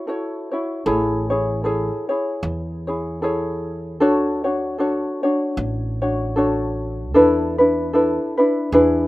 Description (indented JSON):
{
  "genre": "Hawaiian",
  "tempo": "76 BPM",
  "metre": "4/4",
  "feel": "swing 56% on 8ths",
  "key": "A major",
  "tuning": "A4 = 441 Hz",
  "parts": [
    { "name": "ukulele", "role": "accompaniment", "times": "0.0-9.1 s", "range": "D4 to C#5", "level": "-18 LUFS", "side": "equal", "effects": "none" },
    { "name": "upright bass", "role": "bass", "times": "0.9-9.1 s", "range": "A1 to E2", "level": "-27 LUFS", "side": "right 1 dB", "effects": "none" }
  ],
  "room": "light reverb, studio ambience",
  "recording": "rough home demo mix",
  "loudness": "-18 LUFS",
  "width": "side -18 dB against mid",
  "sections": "0.9-9.1 A section",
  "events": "break 0.0-0.9",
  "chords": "0.0 F#m7; 0.9 Amaj7; 4.0 Dmaj7; 7.2 E7sus4"
}